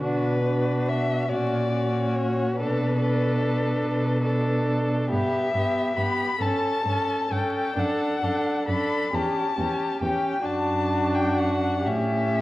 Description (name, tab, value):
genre	classical, slow romantic movement for string quartet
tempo	41-49 BPM (dotted quarters)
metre	6/8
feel	rubato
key	D major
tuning	A4 = 442 Hz
part	muted violin	melody	0.0-12.4 s	B4 to B5	-28 LUFS	left 3 dB	none
part	muted violin	second line	0.0-12.4 s	F#4 to A4	-29 LUFS	left 1 dB	none
part	muted viola	accompaniment	0.0-12.4 s	B3 to D4	-28 LUFS	right 1 dB	none
part	muted cello	bass	0.0-12.4 s	E2 to B2	-27 LUFS	right 1 dB	tube saturation
room	moderate recital hall reverb, RT60 1.4 s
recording	worn, warbling old tape, cassette tape, vinyl crackle, warbly pitch drift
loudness	-22 LUFS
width	side -17 dB against mid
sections	0.0-12.4 A section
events	none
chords	0.0 Bm; 1.3 F#/A#; 2.6 Bm7; 5.1 Em/G; 6.4 A7; 7.8 D; 9.1 C#dim; 10.5 D/F#; 11.9 A7